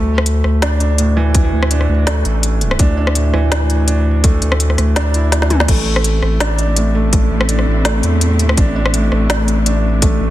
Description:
half-time drum and bass; 166 BPM; 4/4; swing 55% on 16ths, half-time; A4 = 439 Hz
felt-muted upright piano; arpeggios; 0.0-10.3 s; A2 to E4; -20 LUFS; right 2 dB; ping-pong delay
saturated sub bass; bass; 0.0-10.3 s; A1 to E2; -15 LUFS; equal
organic electronic drum kit; drums; 0.2-10.1 s; crash cymbal, hi-hat, rim click, snare drum, toms; -19 LUFS; left 1 dB; overdrive, studio reverb
electronic kick drum; drums; 1.3-10.1 s; -14 LUFS; equal; studio reverb
dark symphonic cello section; sustained chords; 5.7-10.3 s; A2 to E4; -22 LUFS; left 2 dB; sidechain pumping
light reverb; dense, heavily limited modern master; -12 LUFS; side -14 dB against mid
0.0-10.3 A section
kick drops out 5.3-5.7; drum fill 5.3-5.7
0.0 D5; 5.7 Am
0.26 0.62 0.98 | 1.35 1.71 2.07 2.43 | 2.79 3.15 3.52 3.88 | 4.24 4.60 4.96 5.32 | 5.68 6.05 6.41 6.77 | 7.13 7.49 7.85 8.21 | 8.58 8.94 9.30 9.66 | 10.02

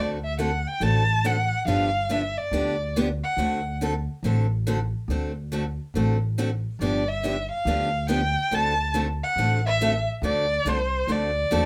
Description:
acoustic string swing (jazz manouche); 140 BPM; 4/4; swing 63% on 8ths; D mixolydian; A4 = 440 Hz
warm violin; melody; 0.0-3.8, 6.8-11.7 s; C5 to A5; -28 LUFS; equal
picked steel-string acoustic guitar; accompaniment; 0.0-11.6 s; D3 to A4; -29 LUFS; equal
upright bass; bass; 0.0-11.7 s; G1 to E2; -29 LUFS; equal
light reverb; -25 LUFS; mono
0.0-11.7 A section
0.0 D7; 1.7 G7; 3.4 D7; 6.8 G7; 8.5 D7
0.39 0.81 1.24 | 1.67 2.10 2.52 2.95 | 3.38 3.81 4.24 4.66 | 5.09 5.52 5.95 6.38 | 6.80 7.23 7.66 8.09 | 8.52 8.95 9.38 9.80 | 10.23 10.66 11.09 11.52

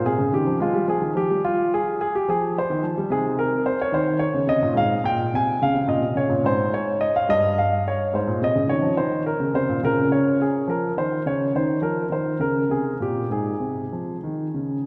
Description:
classical, baroque-style suite movement for grand piano; 71 BPM (dotted quarters); 12/8; rubato; F minor, Ab major from 3.1 s; A4 = 440 Hz
warm grand piano; solo; 0.0-14.9 s; G2 to Ab5; -22 LUFS; equal
wet concert hall reverb, RT60 2.3 s; -22 LUFS; mono
0.0-14.9 A section
0.0 Fm; 3.1 Bbm11; 4.8 Db5/Ab; 6.4 Dbmaj9#11; 8.1 Ab; 9.8 Dbmaj13; 11.5 Eb5; 13.3 Ab
0.60 1.44 2.27 | 3.10 3.92 4.76 5.60 | 6.44 7.29 8.14 8.98 | 9.83 10.68 11.53 12.40 | 13.31 14.24

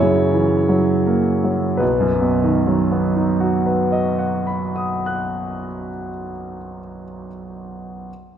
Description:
classical, romantic nocturne for solo piano; 26-31 BPM (dotted quarters); 6/8; rubato; B major; A4 = 440 Hz
clear concert grand piano; solo; 0.0-8.1 s; B1 to F#6; -18 LUFS; right 1 dB
wet concert hall reverb, RT60 2.3 s; recorded in a church or concert hall; -16 LUFS; side -9 dB against mid
0.0-1.8 A section; 1.8-5.8 B section
slowing down 0.0-1.8
0.0 F#7; 1.8 B
| 1.80 3.80

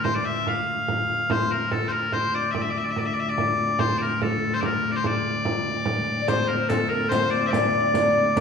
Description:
medieval dance; 144 BPM; 3/4; straight; D minor; A4 = 439 Hz
loud bright bagpipes; melody; 0.0-8.4 s; A4 to F5; -24 LUFS; left 2 dB
warm viola da gamba; drone; 0.0-8.4 s; D2; -31 LUFS; left 1 dB
frame drum; percussion; 0.0-8.4 s; -28 LUFS; right 1 dB
alto recorder; second line; 6.2-8.4 s; A4 to D5; -24 LUFS; left 1 dB
riq; percussion; 6.3-8.4 s; -30 LUFS; left 4 dB
wet recital hall reverb, RT60 1.8 s; recorded in a church or concert hall, studio reverb; -21 LUFS; side -6 dB against mid
0.0-6.3 A section; 6.3-8.4 A section
| 0.04 0.46 0.88 | 1.30 1.71 2.13 | 2.55 2.96 3.38 | 3.80 4.21 4.63 | 5.04 5.46 5.88 | 6.29 6.71 7.12 | 7.54 7.95 8.37

